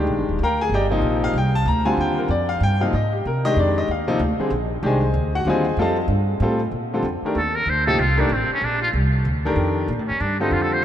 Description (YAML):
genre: jazz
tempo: 189 BPM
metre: 3/4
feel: swing 61% on 8ths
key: Eb major, Bb major from 6.7 s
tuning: A4 = 441 Hz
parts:
  - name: clear baby grand piano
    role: accompaniment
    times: 0.0-10.8 s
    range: C3 to Bb5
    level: -21 LUFS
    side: left 1 dB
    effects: none
  - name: upright bass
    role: bass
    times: 0.0-10.8 s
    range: Eb1 to C3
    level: -22 LUFS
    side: right 1 dB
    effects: none
  - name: trumpet with metal mute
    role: melody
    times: 7.4-10.8 s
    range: C4 to C5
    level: -22 LUFS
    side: equal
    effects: none
room: moderate cathedral reverb, RT60 5.5 s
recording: in a vast, echoing space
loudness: -18 LUFS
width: side -10 dB against mid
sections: 0.0-6.7 A section; 6.7-10.8 A section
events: muted trumpet solo 6.7-10.8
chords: 0.0 Ebmaj9; 2.9 Abmaj9; 5.8 F9; 6.7 Bbmaj9